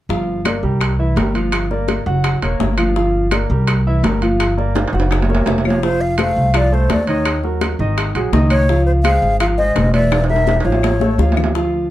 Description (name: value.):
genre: Afro-Cuban jazz.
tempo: 168 BPM.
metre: 4/4.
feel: straight.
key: unclear.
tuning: A4 = 436 Hz.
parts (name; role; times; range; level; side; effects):
warm concert grand piano; accompaniment; 0.1-11.8 s; Eb3 to Gb5; -20 LUFS; equal; none.
upright bass; bass; 0.1-11.9 s; Fb1 to Eb2; -18 LUFS; equal; none.
bongos; percussion; 0.1-11.7 s; none; -27 LUFS; left 7 dB; none.
congas; percussion; 0.1-11.9 s; none; -23 LUFS; left 1 dB; none.
claves; percussion; 0.5-11.5 s; none; -29 LUFS; left 9 dB; none.
timbales; percussion; 0.5-11.5 s; none; -22 LUFS; right 4 dB; none.
breathy concert flute; melody; 5.7-11.4 s; C5 to F5; -19 LUFS; left 1 dB; none.
room: light reverb.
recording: dark, warm production.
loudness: -14 LUFS.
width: side -14 dB against mid.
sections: 0.1-5.8 A section; 5.8-11.9 B section.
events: drum fill 4.8-5.8, 10.1-11.5.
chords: 0.1 Gm7; 0.8 C7; 1.5 Gm7; 2.2 Gb7; 3.0 Gm7; 3.7 C7; 4.4 Gm7; 5.1 Gb; 5.8 F; 7.3 Ebm; 8.0 Absus2; 8.7 Dbmaj9; 10.1 Edim; 10.8 Aaug.